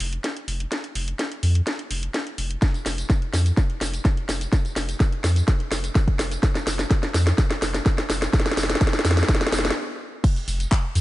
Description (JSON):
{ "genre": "progressive house", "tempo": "126 BPM", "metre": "4/4", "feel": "straight", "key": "unclear", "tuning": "A4 = 440 Hz", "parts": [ { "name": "round analog bass", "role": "bass", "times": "0.0-11.0 s", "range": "F1 to F2", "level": "-23 LUFS", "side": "equal", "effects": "sidechain pumping" }, { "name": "house drum kit", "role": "drums", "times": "0.0-11.0 s", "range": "crash cymbal, handclaps, hi-hat, snare drum, tambourine", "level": "-25 LUFS", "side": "equal", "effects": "sidechain pumping on hats, sidechain pumping on perc, sidechain pumping on cymbals" }, { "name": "electronic kick drum", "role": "drums", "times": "2.6-10.8 s", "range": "none", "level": "-20 LUFS", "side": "equal", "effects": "none" } ], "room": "light reverb", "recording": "nothing above 10.6 kHz", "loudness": "-20 LUFS", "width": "side -16 dB against mid", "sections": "0.0-10.2 A section", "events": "build-up 0.0-10.2; drum fill 0.0-9.8; stop 9.8-10.2", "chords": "none" }